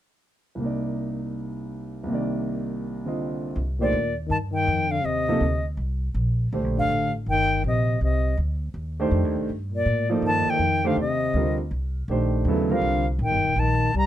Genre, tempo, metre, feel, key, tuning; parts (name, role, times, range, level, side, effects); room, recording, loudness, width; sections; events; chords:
modal jazz; 162 BPM; 4/4; swing 63% on 8ths; C dorian; A4 = 440 Hz
warm concert grand piano; accompaniment; 0.6-13.0 s; C2 to Eb5; -26 LUFS; right 2 dB
upright bass; bass; 3.6-14.1 s; Eb1 to A2; -25 LUFS; equal
bright reedy silver concert flute; melody; 3.8-14.1 s; D5 to Bb5; -24 LUFS; equal
breathy trombone; second line; 3.8-14.1 s; Bb2 to G3; -28 LUFS; left 6 dB
light reverb; -22 LUFS; side -12 dB against mid
0.6-3.6 A section; 3.6-14.1 B section
0.6 Cm9